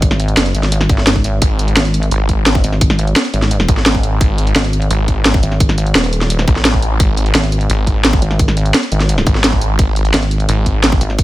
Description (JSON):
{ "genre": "dark technical drum and bass", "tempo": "172 BPM", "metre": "4/4", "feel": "straight", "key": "unclear", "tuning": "A4 = 440 Hz", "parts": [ { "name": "pulsing pluck wobble bass", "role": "bass", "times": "0.0-11.2 s", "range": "D#1 to G#1", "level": "-15 LUFS", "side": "equal", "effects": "chorus, tube saturation" }, { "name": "drum and bass drum kit", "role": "drums", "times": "0.0-11.2 s", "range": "hi-hat, snare drum", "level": "-16 LUFS", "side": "equal", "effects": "studio reverb" }, { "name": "electronic kick drum", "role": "drums", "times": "0.0-11.2 s", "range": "none", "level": "-14 LUFS", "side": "equal", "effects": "studio reverb" }, { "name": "snarling distorted saw bass", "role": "bass", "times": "1.4-11.0 s", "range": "G#1 to A1", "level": "-15 LUFS", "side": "equal", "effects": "distortion, sidechain pumping" } ], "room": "little or no reverb", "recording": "none", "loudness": "-11 LUFS", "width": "side -16 dB against mid", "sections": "0.0-11.2 A section", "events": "none", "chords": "0.0 G#5" }